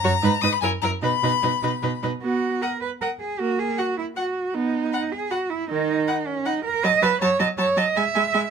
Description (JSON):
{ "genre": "quick classical-period movement for string quartet", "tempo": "156 BPM", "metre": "3/4", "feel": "straight", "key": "B major", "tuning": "A4 = 441 Hz", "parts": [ { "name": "rich violin", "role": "melody", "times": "0.0-8.4 s", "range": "G#5 to D#6", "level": "-26 LUFS", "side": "left 10 dB", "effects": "none" }, { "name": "clear violin", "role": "second line", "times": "0.0-8.4 s", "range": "A#4 to A5", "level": "-28 LUFS", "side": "left 3 dB", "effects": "none" }, { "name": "rich viola", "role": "accompaniment", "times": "0.0-8.4 s", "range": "D#3 to F#4", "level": "-27 LUFS", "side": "right 4 dB", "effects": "none" }, { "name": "rich cello", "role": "bass", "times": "0.0-8.5 s", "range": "F#2 to E5", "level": "-23 LUFS", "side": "right 4 dB", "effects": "none" } ], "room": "light reverb", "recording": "minimal, uncompressed stereo recording", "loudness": "-20 LUFS", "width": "side -6 dB against mid", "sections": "0.0-2.2 A section; 2.2-8.5 A section", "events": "none", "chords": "0.2 G#m; 0.6 F#7; 1.0 B; 2.2 B5; 3.4 F#/A#; 4.5 B; 5.7 N.C.; 6.8 B7/F#; 8.0 E", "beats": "0.23 0.63 | 1.03 1.43 1.83 | 2.23 2.62 3.01 | 3.39 3.78 4.16 | 4.54 4.92 5.31 | 5.69 6.08 6.45 | 6.83 7.21 7.59 | 7.96 8.34" }